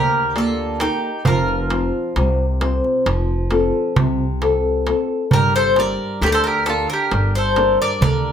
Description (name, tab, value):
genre	greek folk, Greek bouzouki band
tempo	133 BPM (eighths)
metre	9/8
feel	straight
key	G minor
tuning	A4 = 440 Hz
part	Greek bouzouki	melody	0.0-8.3 s	G4 to D5	-19 LUFS	left 2 dB	none
part	bowl-back mandolin	second line	0.0-8.3 s	Eb4 to Bb4	-25 LUFS	right 4 dB	none
part	nylon-string guitar	accompaniment	0.0-8.3 s	C3 to D5	-21 LUFS	left 2 dB	none
part	upright bass	bass	0.0-8.3 s	F1 to D2	-22 LUFS	equal	none
part	darbuka	percussion	0.4-8.2 s	none	-21 LUFS	right 4 dB	none
room	moderate small room reverb, RT60 0.6 s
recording	none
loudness	-16 LUFS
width	side -8 dB against mid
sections	0.0-8.3 A section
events	none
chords	0.0 Gm; 1.3 F; 5.3 Gm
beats	0.36 0.81 | 1.26 1.71 2.16 2.61 3.06 3.52 3.97 4.42 4.87 | 5.32 5.77 6.22 6.67 7.12 7.57 8.02